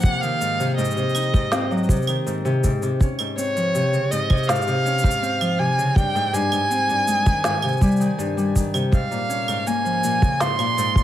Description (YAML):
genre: folktronica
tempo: 81 BPM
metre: 4/4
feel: straight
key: unclear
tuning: A4 = 440 Hz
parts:
  - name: warm violin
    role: melody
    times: 0.0-11.0 s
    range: Db5 to C6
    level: -23 LUFS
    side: right 2 dB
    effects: plate reverb
  - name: Celtic harp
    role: arpeggios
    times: 0.0-11.0 s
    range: G2 to Eb4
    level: -22 LUFS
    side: left 1 dB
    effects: none
  - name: electronic shaker, claves and snare drum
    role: drums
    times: 0.0-11.0 s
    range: none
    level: -28 LUFS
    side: right 1 dB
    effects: overdrive
  - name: kick drum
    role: drums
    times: 0.0-11.0 s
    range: none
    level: -17 LUFS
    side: equal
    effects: none
room: light reverb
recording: vinyl crackle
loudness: -18 LUFS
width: side -12 dB against mid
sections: 0.0-11.0 A section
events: none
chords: 0.0 Ab; 3.0 Dbmaj7; 6.0 Abmaj7; 8.9 Bbm7